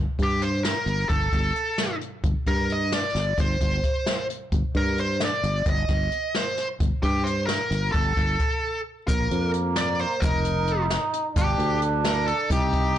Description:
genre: progressive instrumental, band music in an uneven meter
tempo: 263 BPM (eighths)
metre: 5/8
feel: straight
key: G minor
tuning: A4 = 443 Hz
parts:
  - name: sustaining fretless electric bass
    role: bass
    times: 0.0-13.0 s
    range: F1 to G2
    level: -26 LUFS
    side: equal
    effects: analog chorus
  - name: smooth overdriven lead guitar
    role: melody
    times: 0.2-13.0 s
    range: G4 to Eb5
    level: -26 LUFS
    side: equal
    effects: plate reverb
  - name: jazz brush drum kit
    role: drums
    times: 0.2-13.0 s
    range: hi-hat, kick drum, snare drum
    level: -26 LUFS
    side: equal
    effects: none
  - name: trombone with plunger mute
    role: second line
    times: 9.1-13.0 s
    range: Bb3 to Eb4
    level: -27 LUFS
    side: right 4 dB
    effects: plate reverb
  - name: egg shaker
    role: percussion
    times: 9.1-12.7 s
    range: none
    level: -46 LUFS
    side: left 7 dB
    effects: none
room: light reverb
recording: blown-out, overdriven recording, overdrive, nothing above 10.7 kHz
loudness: -22 LUFS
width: side -11 dB against mid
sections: 0.0-9.1 A section; 9.1-13.0 B section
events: break 8.5-9.1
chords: 0.0 G5; 9.1 Bb5; 10.2 F7sus4; 11.4 G5

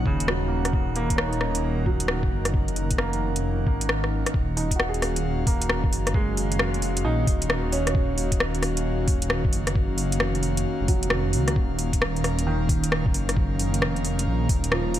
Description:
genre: future garage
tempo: 133 BPM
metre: 4/4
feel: swing 64% on 16ths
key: Eb minor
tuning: A4 = 441 Hz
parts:
  - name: clear upright piano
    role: accompaniment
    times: 0.0-15.0 s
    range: Db3 to Ab4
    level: -31 LUFS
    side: right 3 dB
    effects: sidechain pumping, digital delay
  - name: airy breathy pad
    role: sustained chords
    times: 0.0-15.0 s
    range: Eb3 to Gb5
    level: -29 LUFS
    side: equal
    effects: chorus, vintage 12-bit sampler grit, sidechain pumping
  - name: dark detuned saw bass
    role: bass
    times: 0.0-15.0 s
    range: Eb1 to Db2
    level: -27 LUFS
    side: equal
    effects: tube saturation, sidechain pumping
  - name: drifting glass-harmonics texture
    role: texture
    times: 0.0-4.4 s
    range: Gb5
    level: -41 LUFS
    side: right 4 dB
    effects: chorus, built-in reverb
  - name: electronic kick drum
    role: drums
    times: 0.1-14.6 s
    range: none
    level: -24 LUFS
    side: equal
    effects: none
  - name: garage drum kit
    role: drums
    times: 0.2-15.0 s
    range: hi-hat, rim click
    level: -27 LUFS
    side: left 1 dB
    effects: none
room: digital ambience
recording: none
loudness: -22 LUFS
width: side -12 dB against mid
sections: 0.0-4.3 A section; 4.3-15.0 B section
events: kick drops out 3.9-4.3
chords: 0.0 Ebm7

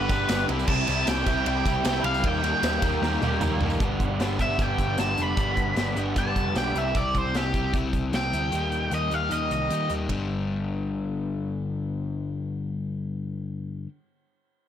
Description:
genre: indie rock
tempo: 153 BPM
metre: 4/4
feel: straight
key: unclear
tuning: A4 = 439 Hz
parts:
  - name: overdriven electric guitar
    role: melody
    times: 0.0-9.9 s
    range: G4 to B5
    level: -28 LUFS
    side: right 1 dB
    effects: spring reverb, slapback echo
  - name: string machine, violas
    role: sustained chords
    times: 0.0-3.8 s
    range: Bb4 to Eb6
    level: -42 LUFS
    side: equal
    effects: none
  - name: overdriven semi-hollow guitar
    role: riff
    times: 0.0-13.9 s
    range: G2 to G4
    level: -29 LUFS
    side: left 4 dB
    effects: none
  - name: raw garage guitar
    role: riff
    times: 0.0-6.9 s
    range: G2 to G4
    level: -30 LUFS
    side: right 7 dB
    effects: overdrive, ensemble chorus, slapback echo
  - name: hollow-body short-scale picked electric bass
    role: bass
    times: 0.0-13.8 s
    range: F1 to Eb3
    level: -31 LUFS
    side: equal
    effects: transformer saturation
  - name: tambourine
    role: percussion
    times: 0.0-3.8 s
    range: none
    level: -45 LUFS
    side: right 8 dB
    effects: none
  - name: big rock drum kit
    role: drums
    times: 0.1-10.2 s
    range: crash cymbal, hi-hat, kick drum, ride cymbal, snare drum, toms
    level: -29 LUFS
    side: equal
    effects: none
room: small room ambience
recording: blown-out, overdriven recording, overdrive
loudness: -23 LUFS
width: side -10 dB against mid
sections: 0.0-3.8 A section; 3.8-10.1 B section; 10.1-13.2 C section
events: drum fill 3.0-3.8; overdriven electric guitar solo 3.8-10.1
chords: 0.5 Cadd9; 2.2 Eb; 3.8 G; 6.8 C; 8.5 Eb; 10.1 G

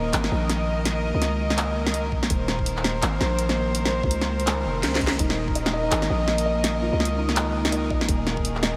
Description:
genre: half-time drum and bass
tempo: 166 BPM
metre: 4/4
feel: swing 59% on 16ths, half-time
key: unclear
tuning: A4 = 440 Hz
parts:
  - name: rich studio cello section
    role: sustained chords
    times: 0.0-8.8 s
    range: Eb3 to Eb5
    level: -29 LUFS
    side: equal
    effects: sidechain pumping
  - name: growling 808-style bass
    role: bass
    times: 0.0-8.8 s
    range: Eb1 to Db2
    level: -29 LUFS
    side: equal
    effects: none
  - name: drum and bass drum kit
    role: drums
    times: 0.1-8.7 s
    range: handclaps, hi-hat, snare drum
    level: -29 LUFS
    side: equal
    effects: none
  - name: electronic kick drum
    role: drums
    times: 2.1-5.5, 7.9-8.4 s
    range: none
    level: -29 LUFS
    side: equal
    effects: none
  - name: felt-muted upright piano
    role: arpeggios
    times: 5.2-8.8 s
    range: Eb4 to Eb5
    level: -32 LUFS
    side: equal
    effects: analog delay
room: moderate huge ambient reverb, RT60 5.1 s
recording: dreamy mix soaked in reverb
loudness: -24 LUFS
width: mono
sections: 0.0-8.8 A section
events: drum fill 4.8-5.2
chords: 0.0 Eb5

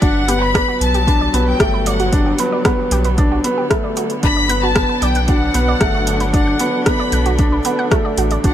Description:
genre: piano and strings electronica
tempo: 114 BPM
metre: 4/4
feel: straight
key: G major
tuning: A4 = 440 Hz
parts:
  - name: rich chamber violin section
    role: melody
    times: 0.0-8.5 s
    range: F#5 to B5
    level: -21 LUFS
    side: left 3 dB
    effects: none
  - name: dark string quartet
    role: sustained chords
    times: 0.0-8.5 s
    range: D3 to D4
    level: -25 LUFS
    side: left 1 dB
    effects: none
  - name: analog pluck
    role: arpeggios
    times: 0.0-8.5 s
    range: F#4 to F#5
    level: -25 LUFS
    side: right 5 dB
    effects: chorus, sidechain pumping, tape echo
  - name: felt-muted upright piano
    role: riff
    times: 0.0-8.5 s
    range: A3 to D4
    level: -19 LUFS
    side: equal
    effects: tape echo
  - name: round analog bass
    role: bass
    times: 0.0-8.5 s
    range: G1 to B1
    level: -19 LUFS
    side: equal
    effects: sidechain pumping
  - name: deep house drum kit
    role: drums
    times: 0.0-8.5 s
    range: hi-hat, rim click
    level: -21 LUFS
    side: equal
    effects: overdrive, high-pass filter on hats, high-pass filter on snare
  - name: electronic kick drum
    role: drums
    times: 0.0-8.5 s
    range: none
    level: -18 LUFS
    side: equal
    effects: overdrive
room: light reverb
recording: none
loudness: -13 LUFS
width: side -10 dB against mid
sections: 0.0-8.5 A section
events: drop 0.0-8.5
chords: 0.0 Gmaj7

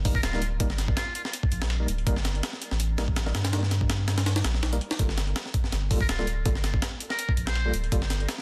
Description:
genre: drum and bass, jungle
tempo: 164 BPM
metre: 4/4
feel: swing 54% on 16ths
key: unclear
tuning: A4 = 441 Hz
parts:
  - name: saturated sub bass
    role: bass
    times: 0.0-8.3 s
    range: D1 to G2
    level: -30 LUFS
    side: equal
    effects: none
  - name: trumpet with metal mute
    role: melody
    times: 0.1-1.3, 6.0-7.7 s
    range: F4 to C5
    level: -37 LUFS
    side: equal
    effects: dub echo
  - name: tine electric piano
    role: stabs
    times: 0.1-8.0 s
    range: G3 to Bb4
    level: -38 LUFS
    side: equal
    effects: medium tremolo, dub echo
  - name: breakbeat sampler-style drum kit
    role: drums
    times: 0.1-8.4 s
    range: hi-hat, kick drum, snare drum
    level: -30 LUFS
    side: equal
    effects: studio ambience
  - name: dusty soul sampler-style drum kit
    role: drums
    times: 0.1-8.4 s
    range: hi-hat, snare drum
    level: -42 LUFS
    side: equal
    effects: none
room: digital ambience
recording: dense, heavily limited modern master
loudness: -27 LUFS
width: mono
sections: 0.0-8.4 A section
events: none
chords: 0.0 Eb (rootless); 5.0 Gm

